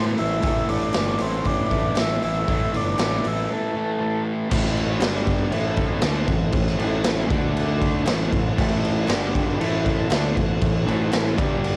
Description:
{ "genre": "garage rock duo or trio", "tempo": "118 BPM", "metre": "4/4", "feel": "straight", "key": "A minor", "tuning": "A4 = 440 Hz", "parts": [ { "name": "combo organ", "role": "melody", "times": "0.0-4.2 s", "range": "C4 to A4", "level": "-29 LUFS", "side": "equal", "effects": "cassette tape" }, { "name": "combo organ", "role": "sustained chords", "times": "0.0-11.8 s", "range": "D4 to D5", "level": "-34 LUFS", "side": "equal", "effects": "cassette tape" }, { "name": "fuzz guitar", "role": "riff", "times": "0.0-11.8 s", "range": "G2 to D4", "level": "-28 LUFS", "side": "equal", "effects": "distortion, cassette tape" }, { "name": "fuzz fingered electric bass", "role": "bass", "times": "0.0-11.8 s", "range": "G1 to A2", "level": "-28 LUFS", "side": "equal", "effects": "overdrive, tube saturation" }, { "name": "raw garage drum kit", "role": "drums", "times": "0.2-11.8 s", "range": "crash cymbal, hi-hat, kick drum, snare drum", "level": "-26 LUFS", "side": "equal", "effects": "none" }, { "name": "group handclap", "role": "percussion", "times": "0.9-11.5 s", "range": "none", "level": "-43 LUFS", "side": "equal", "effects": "none" } ], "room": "studio ambience", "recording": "home recording on cassette", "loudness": "-22 LUFS", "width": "mono", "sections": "0.0-4.5 A section; 4.5-11.8 B section", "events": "break 3.5-4.5", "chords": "0.0 A5; 4.5 Am; 5.0 G5; 5.5 Am; 7.3 D5; 8.1 Am; 9.1 G5; 9.6 Am" }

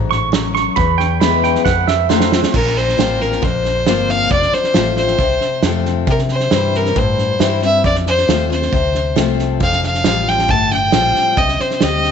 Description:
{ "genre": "honky-tonk and classic country", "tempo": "136 BPM", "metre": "4/4", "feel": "straight", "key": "Bb major", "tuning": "A4 = 441 Hz", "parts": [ { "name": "picked steel-string acoustic guitar", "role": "accompaniment", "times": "0.0-12.1 s", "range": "E2 to G4", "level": "-20 LUFS", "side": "left 12 dB", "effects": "none" }, { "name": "vintage muted fingered electric bass", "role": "bass", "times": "0.0-12.1 s", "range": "F1 to C3", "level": "-21 LUFS", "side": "equal", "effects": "none" }, { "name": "pedal steel guitar", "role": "second line", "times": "0.1-2.5 s", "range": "C5 to C#6", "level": "-18 LUFS", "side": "right 11 dB", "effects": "tape echo" }, { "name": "natural country drum kit", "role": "drums", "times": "0.1-12.1 s", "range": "crash cymbal, hi-hat, kick drum, snare drum", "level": "-19 LUFS", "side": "right 4 dB", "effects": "none" }, { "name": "clear fiddle", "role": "melody", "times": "2.5-12.1 s", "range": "Bb4 to A5", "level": "-16 LUFS", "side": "equal", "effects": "none" } ], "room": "light reverb, small room ambience", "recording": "1960s-style stereo with parts hard left and right, nothing above 8.0 kHz", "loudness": "-13 LUFS", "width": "side -7 dB against mid", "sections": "0.0-2.5 A section; 2.5-12.1 B section", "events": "pedal steel guitar solo 0.0-2.5; drum fill 1.7-2.5", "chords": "0.0 D (rootless); 0.8 E; 1.7 F7; 2.5 Bbsus2; 4.3 F; 6.1 C; 7.8 F; 9.6 Fadd9; 11.4 Cm" }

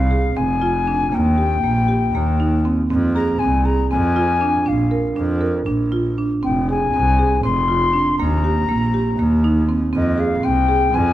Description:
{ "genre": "contemporary instrumental, chamber music in an uneven meter", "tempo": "239 BPM (eighths)", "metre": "7/8", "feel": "straight", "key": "F dorian", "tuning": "A4 = 439 Hz", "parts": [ { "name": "mellow silver concert flute", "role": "melody", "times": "0.0-11.1 s", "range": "Eb5 to C6", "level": "-21 LUFS", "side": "left 5 dB", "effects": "none" }, { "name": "marimba with medium mallets", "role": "arpeggios", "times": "0.0-11.1 s", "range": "Bb3 to Bb4", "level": "-20 LUFS", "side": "right 3 dB", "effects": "none" }, { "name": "bright double bass", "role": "bass", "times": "0.0-11.1 s", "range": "F1 to F2", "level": "-20 LUFS", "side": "equal", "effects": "none" } ], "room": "moderate recital hall reverb, RT60 1.5 s", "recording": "dark, warm production", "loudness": "-16 LUFS", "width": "side -13 dB against mid", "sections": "0.0-11.1 A section", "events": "none", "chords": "0.0 Fm; 1.1 Eb; 2.9 Fm; 4.7 Bb; 6.4 Fm; 8.2 Eb; 9.9 Fm" }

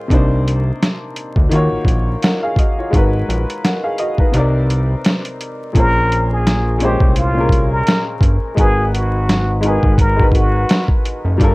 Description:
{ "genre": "lo-fi hip hop", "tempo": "85 BPM", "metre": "4/4", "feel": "swing 56% on 16ths", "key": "unclear", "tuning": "A4 = 437 Hz", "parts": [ { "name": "clear upright piano", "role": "accompaniment", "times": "0.0-11.5 s", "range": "Bb2 to Gb5", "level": "-20 LUFS", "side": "left 1 dB", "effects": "cassette tape" }, { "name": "fat analog bass", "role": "bass", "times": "0.1-11.5 s", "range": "Gb1 to Eb2", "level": "-17 LUFS", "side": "equal", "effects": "none" }, { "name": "lo-fi sampler-style drum kit", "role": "drums", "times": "0.1-11.5 s", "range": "hi-hat, kick drum, snare drum", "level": "-15 LUFS", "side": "equal", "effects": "overdrive" }, { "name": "trumpet with plunger mute", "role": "melody", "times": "5.8-10.9 s", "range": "F4 to Bb4", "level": "-20 LUFS", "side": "equal", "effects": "tape echo" } ], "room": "light reverb", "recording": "vinyl crackle", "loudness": "-13 LUFS", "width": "side -22 dB against mid", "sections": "0.0-5.8 A section; 5.8-11.5 B section", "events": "kick muted 4.3-5.8", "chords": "0.1 Cm7; 1.5 Ebm7; 2.9 Abm7; 4.3 Cm7; 5.8 Bbm9; 8.6 Abm9" }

